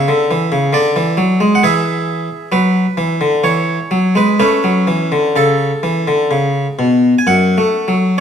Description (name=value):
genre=classical, baroque-style suite movement for harpsichord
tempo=61-70 BPM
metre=3/4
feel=rubato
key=A major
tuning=A4 = 441 Hz
part: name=harpsichord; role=solo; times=0.0-8.2 s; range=F#2 to G#5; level=-12 LUFS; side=equal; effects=none
room=wet stone room reverb, RT60 1.3 s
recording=none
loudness=-12 LUFS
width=side -8 dB against mid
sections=0.0-7.3 A section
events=none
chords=0.0 A (rootless); 0.7 Dadd9; 1.6 E; 2.5 D69; 3.4 E; 4.4 A; 7.3 F#m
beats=0.74 | 1.62 2.51 3.43 | 4.39 5.36 6.31 | 7.26 8.18